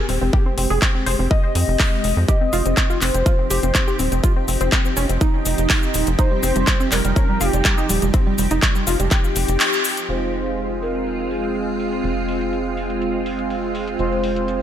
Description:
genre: progressive house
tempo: 123 BPM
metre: 4/4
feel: straight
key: F minor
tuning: A4 = 440 Hz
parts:
  - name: evolving wavetable pad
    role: sustained chords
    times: 0.0-14.6 s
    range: F3 to G4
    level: -27 LUFS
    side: right 1 dB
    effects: ensemble chorus, built-in reverb, phaser, sidechain pumping
  - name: tight sequenced synth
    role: arpeggios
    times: 0.0-10.0 s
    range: G3 to Eb5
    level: -24 LUFS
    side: equal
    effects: chorus, sidechain pumping, ping-pong delay
  - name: tight sequencer bass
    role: bass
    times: 0.1-14.6 s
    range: Eb1 to F2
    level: -23 LUFS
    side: equal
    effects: tube saturation, sidechain pumping
  - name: big-room dance drum kit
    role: drums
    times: 0.1-14.6 s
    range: cabasa, handclaps, hi-hat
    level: -22 LUFS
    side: equal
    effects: low-pass filter on hats, low-pass filter on snare, low-pass filter on perc
  - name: electronic kick drum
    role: drums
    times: 0.3-9.2 s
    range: none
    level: -18 LUFS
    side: equal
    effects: none
  - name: warm velvety synth lead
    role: melody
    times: 2.3-14.6 s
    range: G4 to Eb5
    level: -26 LUFS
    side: left 1 dB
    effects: chorus, cassette tape, sidechain pumping, ping-pong delay
  - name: soft supersaw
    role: stabs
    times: 10.1-14.6 s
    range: Ab3 to F4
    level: -23 LUFS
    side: right 2 dB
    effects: sidechain pumping, low-pass filter, ping-pong delay
room: light reverb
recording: none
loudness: -17 LUFS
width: side -10 dB against mid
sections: 0.0-10.1 A section; 10.1-14.6 B section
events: filter sweep on ambient pad 0.0-10.1; band accent 9.6; filter sweep on drum 10.1-14.6; filter sweep on supersaw synth 10.1-14.6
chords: 0.0 Fm; 2.3 Cm; 10.1 Fm

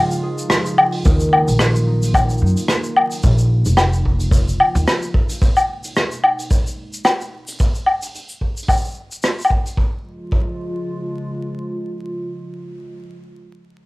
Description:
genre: folktronica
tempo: 110 BPM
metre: 4/4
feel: swing 56% on 16ths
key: Db mixolydian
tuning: A4 = 440 Hz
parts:
  - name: felt-muted upright piano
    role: melody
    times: 0.0-0.7 s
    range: F5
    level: -37 LUFS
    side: right 2 dB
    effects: none
  - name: warbly tape-like pad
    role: sustained chords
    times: 0.0-12.9 s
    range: Cb3 to F4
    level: -28 LUFS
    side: right 1 dB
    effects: chorus, built-in reverb
  - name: concert harp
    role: arpeggios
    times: 0.0-8.2 s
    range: Db3 to Bb4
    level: -26 LUFS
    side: equal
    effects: low-pass filter
  - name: soft brush drum kit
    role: drums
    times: 0.1-9.8 s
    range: hi-hat, rim click, shaker, woodblock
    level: -17 LUFS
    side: left 1 dB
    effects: cassette tape
  - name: upright bass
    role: bass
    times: 1.1-4.8 s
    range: F1 to Gb2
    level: -17 LUFS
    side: equal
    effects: none
  - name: kick drum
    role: drums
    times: 1.1-10.5 s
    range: none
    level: -17 LUFS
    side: equal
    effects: cassette tape
room: light reverb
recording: home recording on cassette, vinyl crackle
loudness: -16 LUFS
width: side -21 dB against mid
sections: 0.0-1.0 A section; 1.0-9.8 B section; 9.8-13.9 C section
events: break 0.0-1.0; filter sweep on harp 1.0-3.2; filter sweep on ambient pad 1.0-7.6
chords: 0.0 Db; 1.0 Ebmadd9; 3.2 Bbm; 5.4 Abmadd9; 7.6 N.C.; 9.8 Db

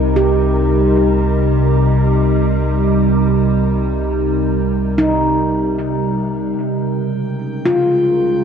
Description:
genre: ambient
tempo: 56 BPM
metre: 3/4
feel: straight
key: unclear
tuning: A4 = 440 Hz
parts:
  - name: evolving wavetable pad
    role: sustained chords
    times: 0.0-8.4 s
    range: C3 to C5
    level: -16 LUFS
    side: equal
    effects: chorus, built-in reverb
  - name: handpan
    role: arpeggios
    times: 0.0-8.4 s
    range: C4 to G4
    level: -18 LUFS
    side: equal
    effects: analog delay
  - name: round analog bass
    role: bass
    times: 0.0-8.4 s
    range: C2 to Db2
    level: -20 LUFS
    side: equal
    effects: none
  - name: drifting glass-harmonics texture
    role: texture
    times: 6.9-8.4 s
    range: G5 to G6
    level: -38 LUFS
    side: equal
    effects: chorus, built-in reverb
room: wet spring reverb, RT60 2.7 s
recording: echo-heavy mix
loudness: -13 LUFS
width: side -7 dB against mid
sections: 0.0-6.6 A section; 6.6-8.4 B section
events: filter sweep on ambient pad 0.0-6.6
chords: 0.0 Cm7; 6.6 Dbmaj7

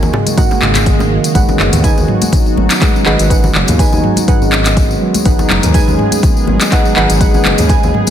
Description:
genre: afro house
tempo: 123 BPM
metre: 4/4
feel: swing 55% on 16ths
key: G# minor pentatonic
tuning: A4 = 439 Hz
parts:
  - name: warm analog pad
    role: sustained chords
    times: 0.0-8.1 s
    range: D#3 to G#4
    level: -21 LUFS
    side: right 1 dB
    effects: chorus, sidechain pumping
  - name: deep mellow chord stab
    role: stabs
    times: 0.0-8.1 s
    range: D#4 to G#5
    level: -20 LUFS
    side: right 4 dB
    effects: chorus, sidechain pumping, digital delay
  - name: smooth synth bass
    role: bass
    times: 0.0-7.9 s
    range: F#1 to D#2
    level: -16 LUFS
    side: equal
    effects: sidechain pumping
  - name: bongos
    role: percussion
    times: 0.0-1.1 s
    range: none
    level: -24 LUFS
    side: right 2 dB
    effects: none
  - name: congas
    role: percussion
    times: 0.0-8.1 s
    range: none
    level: -21 LUFS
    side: left 3 dB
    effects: none
  - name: tambourine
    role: percussion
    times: 0.0-8.1 s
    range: none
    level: -26 LUFS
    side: left 4 dB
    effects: none
  - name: handpan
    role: arpeggios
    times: 0.1-8.0 s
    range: C#3 to D#4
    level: -17 LUFS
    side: right 1 dB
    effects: sidechain pumping, digital delay
  - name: afro-pop drum kit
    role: drums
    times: 0.1-8.1 s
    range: handclaps, hi-hat, toms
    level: -17 LUFS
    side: left 1 dB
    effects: none
  - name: electronic kick drum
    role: drums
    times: 0.4-7.8 s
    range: none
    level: -13 LUFS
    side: equal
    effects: none
  - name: swell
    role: sound effects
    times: 0.5-1.4 s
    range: none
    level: -25 LUFS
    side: equal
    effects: none
room: light reverb, studio reverb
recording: dense, heavily limited modern master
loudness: -9 LUFS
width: side -10 dB against mid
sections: 0.0-1.4 A section; 1.4-8.1 B section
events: swell 0.5-1.4; drop 1.4-8.1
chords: 0.0 D#m; 1.4 G#m7

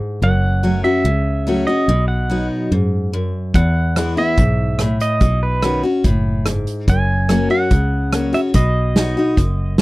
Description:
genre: honky-tonk and classic country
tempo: 144 BPM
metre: 4/4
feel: straight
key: unclear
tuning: A4 = 440 Hz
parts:
  - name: picked steel-string acoustic guitar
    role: accompaniment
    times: 0.0-9.8 s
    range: E2 to F#4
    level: -19 LUFS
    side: left 1 dB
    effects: none
  - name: pedal steel guitar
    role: second line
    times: 0.2-9.8 s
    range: B4 to G#5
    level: -22 LUFS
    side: right 2 dB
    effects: none
  - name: fingered electric bass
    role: bass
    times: 0.2-9.8 s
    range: F#1 to F#2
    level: -18 LUFS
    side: equal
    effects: none
  - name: unplugged drum kit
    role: drums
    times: 3.5-9.8 s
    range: hi-hat, kick drum, rim click, snare drum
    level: -16 LUFS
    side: equal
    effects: none
room: little or no reverb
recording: dry, close 1970s-style studio recording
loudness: -15 LUFS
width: side -20 dB against mid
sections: 0.0-9.8 A section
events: pedal steel guitar solo 0.0-9.8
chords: 0.2 F#m; 1.9 B; 3.5 E; 5.2 Bsus2; 6.9 F#; 8.5 B

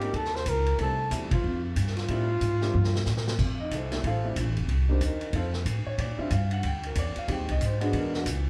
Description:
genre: jazz, small-group swing and bop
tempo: 185 BPM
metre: 4/4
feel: swing 62% on 8ths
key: F major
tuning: A4 = 437 Hz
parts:
  - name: breathy flugelhorn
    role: melody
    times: 0.0-3.0 s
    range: F4 to C5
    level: -32 LUFS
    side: equal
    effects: none
  - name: warm grand piano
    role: accompaniment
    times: 0.0-8.2 s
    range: G3 to G5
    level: -35 LUFS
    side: equal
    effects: none
  - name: upright bass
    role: bass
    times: 0.0-8.5 s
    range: F1 to Bb2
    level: -30 LUFS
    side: equal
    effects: none
  - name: vintage drum kit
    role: drums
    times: 0.0-8.4 s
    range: crash cymbal, hi-hat, kick drum, ride cymbal, snare drum, toms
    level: -36 LUFS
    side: equal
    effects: none
room: wet large studio reverb, RT60 0.9 s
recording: band playing live in one room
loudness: -28 LUFS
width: mono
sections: 0.0-3.4 A section; 3.4-8.5 B section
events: band accent 1.3; drum fill 2.7-3.4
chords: 0.1 Eb5; 0.8 Fmaj9; 4.7 Cm7; 5.3 F; 6.0 Bb6; 7.3 Fm9; 7.9 E9

